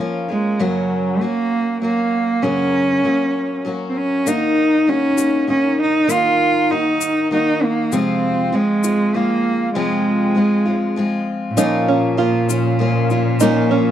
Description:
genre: acoustic folk duo or small band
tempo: 98 BPM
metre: 3/4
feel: straight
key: Bb minor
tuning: A4 = 439 Hz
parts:
  - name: picked steel-string acoustic guitar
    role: accompaniment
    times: 0.0-13.9 s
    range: F2 to Gb4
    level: -20 LUFS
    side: left 3 dB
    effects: none
  - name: rich cello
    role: second line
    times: 0.3-13.9 s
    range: A2 to F4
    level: -18 LUFS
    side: right 2 dB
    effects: none
  - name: tube shaker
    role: percussion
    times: 4.3-13.5 s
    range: none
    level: -26 LUFS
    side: left 15 dB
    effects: none
  - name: glassy FM pad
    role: sustained chords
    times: 12.3-13.9 s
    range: Bb2 to Bb4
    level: -24 LUFS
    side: left 2 dB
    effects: ensemble chorus, built-in reverb
  - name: open-back banjo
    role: arpeggios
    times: 11.6-13.9 s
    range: Db4 to F4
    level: -19 LUFS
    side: right 7 dB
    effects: none
room: studio ambience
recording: dry, close 1970s-style studio recording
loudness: -15 LUFS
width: side -10 dB against mid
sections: 0.0-11.6 A section; 11.6-13.9 B section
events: cello solo 0.0-11.6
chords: 0.0 Bbm; 0.6 Gb; 4.3 Ebm; 7.9 Fm; 11.6 Bbm

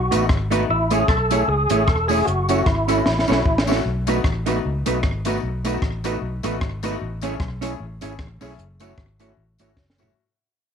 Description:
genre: ska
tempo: 152 BPM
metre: 4/4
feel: swing 56% on 8ths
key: B mixolydian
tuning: A4 = 440 Hz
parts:
  - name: percussive tonewheel organ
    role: melody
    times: 0.0-3.6 s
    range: E4 to A4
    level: -22 LUFS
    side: equal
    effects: overdrive, chorus vibrato, stopped rotary speaker
  - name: vintage muted fingered electric bass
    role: bass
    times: 0.0-10.1 s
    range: E1 to C#2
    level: -25 LUFS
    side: equal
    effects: none
  - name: hollow-body jazz guitar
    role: accompaniment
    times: 0.1-10.1 s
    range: A3 to C#5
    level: -25 LUFS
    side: right 10 dB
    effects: none
  - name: warm upright piano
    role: stabs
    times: 0.1-10.1 s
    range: A3 to G#4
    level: -27 LUFS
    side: left 10 dB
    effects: slapback echo
  - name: compact cocktail drum kit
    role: drums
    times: 0.1-10.1 s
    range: hi-hat, kick drum, rim click, snare drum, toms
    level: -23 LUFS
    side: equal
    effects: slapback echo
  - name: tambourine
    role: percussion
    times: 0.1-10.1 s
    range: none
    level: -38 LUFS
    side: left 12 dB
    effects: none
room: moderate spring reverb, RT60 1.2 s, studio ambience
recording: 1960s-style stereo with parts hard left and right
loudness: -18 LUFS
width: side -7 dB against mid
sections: 0.0-3.8 A section; 3.8-10.2 B section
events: drum fill 3.1-3.8, 9.8-10.2; fade-out 3.8-10.2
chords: 0.0 B7; 0.7 Amaj7; 2.3 F#m7; 3.8 B7; 7.0 Amaj7; 8.6 F#m7

